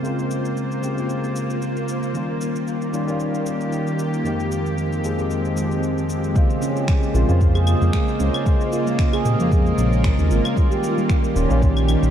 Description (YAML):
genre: organic downtempo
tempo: 114 BPM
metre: 4/4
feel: swing 55% on 16ths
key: Bb dorian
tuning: A4 = 439 Hz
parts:
  - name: tine electric piano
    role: accompaniment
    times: 0.0-12.1 s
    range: F2 to C5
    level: -24 LUFS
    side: left 1 dB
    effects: lush chorus, sidechain pumping, digital delay
  - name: bowed-like drone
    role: sustained chords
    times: 0.0-12.1 s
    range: Eb3 to C5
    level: -26 LUFS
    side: right 1 dB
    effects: built-in reverb, sidechain pumping
  - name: electronic shaker, finger snaps and claves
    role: drums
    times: 0.0-12.1 s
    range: none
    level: -34 LUFS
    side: left 2 dB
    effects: none
  - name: handpan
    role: arpeggios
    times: 6.4-12.1 s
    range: G3 to Ab4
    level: -26 LUFS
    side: right 2 dB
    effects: digital delay
  - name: electronic kick drum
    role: drums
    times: 6.4-11.7 s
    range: none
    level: -19 LUFS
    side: equal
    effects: none
  - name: smooth synth bass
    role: bass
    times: 7.1-12.1 s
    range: Eb1 to F2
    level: -18 LUFS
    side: equal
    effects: sidechain pumping
room: moderate concert hall reverb, RT60 1.7 s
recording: dark, warm production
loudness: -18 LUFS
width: side -9 dB against mid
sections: 0.0-6.4 A section; 6.4-12.1 B section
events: none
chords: 0.0 Bbm7; 2.1 Eb7; 4.3 Fm11; 6.4 Bbm7; 10.6 Eb7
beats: | 0.04 0.57 1.10 1.62 | 2.15 2.67 3.20 3.73 | 4.25 4.78 5.31 5.83 | 6.36 6.88 7.41 7.94 | 8.46 8.99 9.52 10.04 | 10.57 11.10 11.62